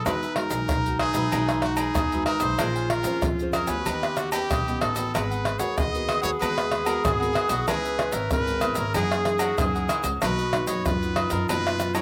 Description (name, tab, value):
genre	samba and choro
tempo	94 BPM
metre	4/4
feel	straight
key	unclear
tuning	A4 = 440 Hz
part	brilliant trumpet	melody	0.0-12.0 s	Gb4 to Eb5	-33 LUFS	equal	none
part	warm clarinet	second line	0.0-12.0 s	D#4 to Cb5	-31 LUFS	equal	slapback echo
part	cavaquinho	accompaniment	0.0-12.0 s	D#4 to Ab5	-38 LUFS	equal	slapback echo
part	nylon-string guitar	accompaniment	0.0-12.0 s	Gb2 to C5	-37 LUFS	equal	none
part	upright bass	bass	0.1-12.0 s	Ab1 to Gb2	-34 LUFS	equal	none
part	agogo bells, egg shaker, surdo, pandeiro and tamborim	percussion	0.1-12.0 s	none	-29 LUFS	equal	none
room	little or no reverb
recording	recorded outdoors, with no room sound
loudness	-25 LUFS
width	mono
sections	0.0-12.0 A section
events	none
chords	0.1 Emaj9; 2.6 Bbm9; 3.9 Eb7alt; 5.1 Abm9; 7.7 Dbm7; 9.0 Gb13; 10.2 Bmaj7